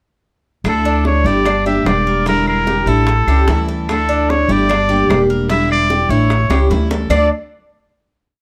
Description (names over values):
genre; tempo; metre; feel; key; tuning
latin, Cuban son and guajira; 149 BPM; 4/4; straight; unclear; A4 = 441 Hz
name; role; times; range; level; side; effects
picked steel-string acoustic guitar; accompaniment; 0.6-7.3 s; D3 to G4; -23 LUFS; equal; none
upright bass; bass; 0.6-7.3 s; E1 to D2; -19 LUFS; equal; none
bongos; percussion; 0.6-7.2 s; none; -26 LUFS; equal; none
trumpet with straight mute; melody; 0.7-7.3 s; A4 to E5; -20 LUFS; equal; none
claves; percussion; 0.7-7.2 s; none; -31 LUFS; equal; none
Cuban tres; arpeggios; 0.9-7.3 s; D4 to D5; -22 LUFS; equal; none
room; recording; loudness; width
little or no reverb; close, detailed microphones; -15 LUFS; mono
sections
0.7-7.1 montuno (vamp); 7.1-8.4 final chord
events
drum fill 6.5-7.1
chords
0.7 Dsus2; 1.5 Gm; 2.3 Em7b5; 3.1 A7; 3.9 Dsus2; 4.7 Gm; 5.5 Em7; 6.3 A7; 7.1 D5